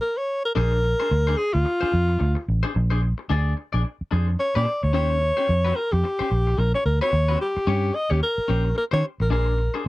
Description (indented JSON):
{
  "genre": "funk",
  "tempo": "110 BPM",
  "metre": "4/4",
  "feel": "swing 60% on 16ths",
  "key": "unclear",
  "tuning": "A4 = 440 Hz",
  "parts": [
    { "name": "breathy alto saxophone", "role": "melody", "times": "0.0-9.8 s", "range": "F4 to Eb5", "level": "-23 LUFS", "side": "equal", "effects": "none" },
    { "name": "clean electric guitar", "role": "accompaniment", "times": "0.6-9.9 s", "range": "Db4 to D5", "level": "-30 LUFS", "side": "left 6 dB", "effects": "none" },
    { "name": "vintage muted fingered electric bass", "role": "bass", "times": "0.6-9.9 s", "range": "A1 to Eb3", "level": "-21 LUFS", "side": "equal", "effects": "none" }
  ],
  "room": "little or no reverb",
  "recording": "dry, close 1970s-style studio recording",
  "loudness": "-20 LUFS",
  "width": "side -18 dB against mid",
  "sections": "0.6-9.9 A section",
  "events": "stop 0.0-0.6",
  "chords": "0.0 N.C.; 0.6 Bb9; 4.9 Eb13; 9.3 Bb9"
}